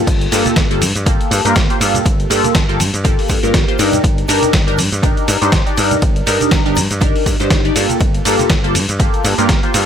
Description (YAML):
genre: filtered disco house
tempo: 121 BPM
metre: 4/4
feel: swing 56% on 16ths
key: G minor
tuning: A4 = 440 Hz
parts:
  - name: funky polysynth comp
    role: accompaniment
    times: 0.0-9.9 s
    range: Bb3 to D5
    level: -16 LUFS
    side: equal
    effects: chorus, phaser, sidechain pumping
  - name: dry thumbed slap bass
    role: bass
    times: 0.1-9.9 s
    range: G1 to G2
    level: -19 LUFS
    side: equal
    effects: sidechain pumping
  - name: dusty soul sampler-style drum kit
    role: drums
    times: 0.1-9.9 s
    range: cabasa, crash cymbal, hi-hat, ride cymbal, snare drum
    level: -19 LUFS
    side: equal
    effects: sidechain pumping on hats, small room ambience, sidechain pumping on perc, sidechain pumping on cymbals
  - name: electronic kick drum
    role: drums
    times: 0.1-9.6 s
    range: none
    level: -16 LUFS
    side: equal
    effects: overdrive, small room ambience
  - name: tube shaker and congas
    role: percussion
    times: 0.1-9.9 s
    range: none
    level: -28 LUFS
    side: right 4 dB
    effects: none
room: little or no reverb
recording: none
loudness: -12 LUFS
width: side -8 dB against mid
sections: 0.0-9.9 A section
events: none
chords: 0.1 Gm9; 3.8 Ebmaj7/G; 8.0 Gm9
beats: | 0.07 0.57 1.06 1.56 | 2.06 2.55 3.05 3.54 | 4.04 4.54 5.03 5.53 | 6.02 6.52 7.01 7.51 | 8.01 8.50 9.00 9.49